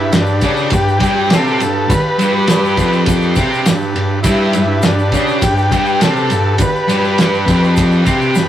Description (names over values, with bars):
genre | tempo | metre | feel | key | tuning
garage rock duo or trio | 102 BPM | 4/4 | straight | G mixolydian | A4 = 440 Hz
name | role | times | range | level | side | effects
overdriven combo organ | melody | 0.0-7.7 s | D4 to B4 | -17 LUFS | left 1 dB | none
overdriven combo organ | sustained chords | 0.0-8.5 s | D4 to B5 | -22 LUFS | left 1 dB | none
thick fuzz guitar | riff | 0.0-8.5 s | F2 to C#4 | -14 LUFS | equal | distortion
cloth-damped thuddy drum kit | drums | 0.1-8.5 s | kick drum, ride cymbal, snare drum | -17 LUFS | equal | none
tube shaker | percussion | 0.1-8.5 s | none | -32 LUFS | left 5 dB | none
room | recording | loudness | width
wet studio reverb, RT60 0.5 s | rough rehearsal-room recording, warm saturation | -11 LUFS | side -11 dB against mid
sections
0.0-8.5 A section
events
transistor combo organ fill 8.1-8.5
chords
0.0 G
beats
0.13 0.72 1.31 | 1.90 2.49 3.07 3.66 | 4.25 4.84 5.42 6.01 | 6.60 7.19 7.77 8.36